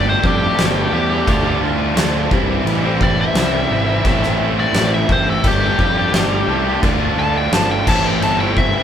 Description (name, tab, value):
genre	quiet-loud alternative rock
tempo	86 BPM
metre	4/4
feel	straight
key	A minor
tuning	A4 = 440 Hz
part	nasal lead guitar with a parked wah	melody	0.0-8.8 s	G4 to A5	-20 LUFS	left 2 dB	overdrive
part	cranked stack guitar	riff	0.0-8.8 s	A2 to G4	-22 LUFS	right 7 dB	overdrive
part	overdriven semi-hollow guitar	riff	0.0-8.8 s	A2 to G4	-22 LUFS	left 4 dB	none
part	fuzz picked electric bass	bass	0.0-8.8 s	G1 to F2	-21 LUFS	equal	overdrive
part	oversized low-tuned drum kit	drums	0.2-8.7 s	crash cymbal, kick drum, snare drum	-19 LUFS	equal	none
room	moderate large studio reverb, RT60 0.9 s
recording	band playing live in one room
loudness	-14 LUFS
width	side -9 dB against mid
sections	0.0-8.8 A section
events	lead electric guitar solo 0.0-8.8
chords	0.0 Gsus2; 1.3 Dm; 2.3 C; 4.0 Am; 5.4 Gsus2; 6.8 Dm; 7.9 Am